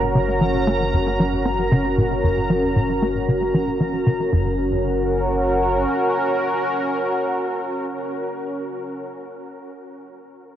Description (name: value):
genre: ambient, sequencer-driven space music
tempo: 115 BPM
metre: 4/4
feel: straight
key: Gb major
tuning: A4 = 438 Hz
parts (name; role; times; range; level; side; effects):
- sweeping resonant pad; sustained chords; 0.0-9.1 s; Db4 to Bb4; -21 LUFS; equal; chorus
- tight sequencer bass; riff; 0.0-4.6 s; Gb2 to Db4; -22 LUFS; equal; analog chorus, tape echo
- round analog bass; bass; 0.0-5.8 s; Gb1; -27 LUFS; equal; tube saturation
- bubbling stepped-filter texture; texture; 0.0-4.3 s; Bb5; -32 LUFS; right 2 dB; chorus, built-in reverb
room: wet huge ambient reverb, RT60 8.7 s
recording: worn, warbling old tape, cassette tape, warbly pitch drift, nothing above 10.8 kHz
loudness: -18 LUFS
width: side -10 dB against mid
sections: 0.0-4.3 A section; 4.3-8.5 B section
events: filter sweep on analog synth bass 0.0-4.3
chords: 0.0 Gb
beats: | 0.15 0.67 1.20 1.72 | 2.24 2.76 3.28 3.80 | 4.33 4.85 5.37 5.89 | 6.41 6.93 7.46 7.98